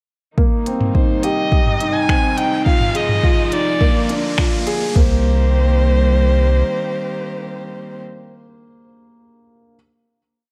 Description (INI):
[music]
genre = piano and strings electronica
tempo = 105 BPM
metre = 4/4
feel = straight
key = C minor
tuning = A4 = 440 Hz
[part]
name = rich string quartet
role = sustained chords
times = 0.4-8.0 s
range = C3 to G4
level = -29 LUFS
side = equal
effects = low-pass filter
[part]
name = dark grand piano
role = riff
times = 0.4-9.8 s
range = Bb3 to Ab4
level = -24 LUFS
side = equal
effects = none
[part]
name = warm sub bass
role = bass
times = 0.4-6.6 s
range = C2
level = -17 LUFS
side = equal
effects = sidechain pumping, high-pass filter
[part]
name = organic electronic drum kit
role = drums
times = 0.4-5.1 s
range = crash cymbal, kick drum, toms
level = -18 LUFS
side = equal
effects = none
[part]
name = riser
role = sound effects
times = 1.8-5.0 s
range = none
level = -33 LUFS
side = equal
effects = none
[part]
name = organic electronic drum kit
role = drums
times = 0.7-4.8 s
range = finger snaps, hi-hat, toms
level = -26 LUFS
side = equal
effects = none
[part]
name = rich violin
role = melody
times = 0.9-8.0 s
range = C5 to Ab5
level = -24 LUFS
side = equal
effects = low-pass filter, digital delay
[sound]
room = light reverb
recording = dark, warm production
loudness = -17 LUFS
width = mono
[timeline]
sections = 0.4-5.0 build; 5.0-7.2 final chord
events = build-up 0.4-5.0; filter sweep on string quartet 0.4-5.0; riser 1.8-5.0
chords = 0.4 Cm7; 1.5 Abmaj7; 2.7 Fm7/Ab; 3.8 Bb7; 5.0 Cm7